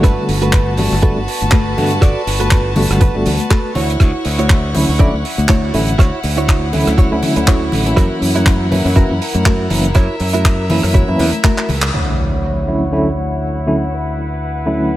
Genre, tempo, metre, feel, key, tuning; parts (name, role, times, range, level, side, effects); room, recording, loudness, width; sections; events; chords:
nu-disco, nu disco; 121 BPM; 4/4; swing 55% on 16ths; D major; A4 = 437 Hz
tine electric piano; accompaniment; 0.0-15.0 s; D3 to F#4; -19 LUFS; equal; medium tremolo, sidechain pumping, digital delay
bright chamber violin section; sustained chords; 0.0-15.0 s; E4 to C#6; -23 LUFS; left 1 dB; vintage 12-bit sampler grit, sidechain pumping, low-pass filter
direct-recorded clean electric guitar; riff; 0.0-11.7 s; E4 to D5; -23 LUFS; right 3 dB; analog chorus, low-pass filter, digital delay
modern bright fingered electric bass; bass; 0.0-15.0 s; F#1 to G2; -18 LUFS; equal
damped 70s drum kit; drums; 0.0-12.0 s; crash cymbal, handclaps, hi-hat, rim click; -21 LUFS; right 1 dB; low-pass filter on toms, low-pass filter on hats, low-pass filter on cymbals, low-pass filter on snare, low-pass filter on room
electronic kick drum; drums; 0.0-11.6 s; -12 LUFS; equal
congas; percussion; 0.4-11.8 s; -23 LUFS; left 4 dB
impact; sound effects; 11.9-13.9 s; -23 LUFS; equal
light reverb, small room ambience; -12 LUFS; side -15 dB against mid
0.0-11.9 A section; 11.9-15.0 B section
drum fill 11.6-11.9; band accent 11.8; impact 11.9-13.9; filter sweep on violin section 11.9-15.0
0.0 Gmaj9; 3.8 Dmaj9; 8.0 F#7; 11.9 Dmaj9